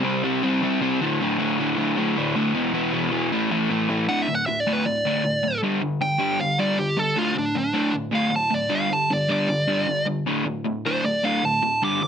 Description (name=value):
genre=punk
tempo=156 BPM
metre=4/4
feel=straight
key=unclear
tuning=A4 = 440 Hz
part: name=crunchy overdriven guitar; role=riff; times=0.0-12.1 s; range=D2 to C4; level=-22 LUFS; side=equal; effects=none
part: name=dark smooth lead guitar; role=melody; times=4.1-12.1 s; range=D4 to D6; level=-22 LUFS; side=right 1 dB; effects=overdrive
room=light reverb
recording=heavily compressed radio sound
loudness=-20 LUFS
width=side -8 dB against mid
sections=0.0-4.1 A section; 4.1-12.1 B section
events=lead electric guitar solo 4.1-12.1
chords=0.0 C5; 1.0 D5; 2.5 E5; 3.3 A5; 4.1 D5; 5.6 G5; 7.2 D5; 8.7 G5; 10.3 D5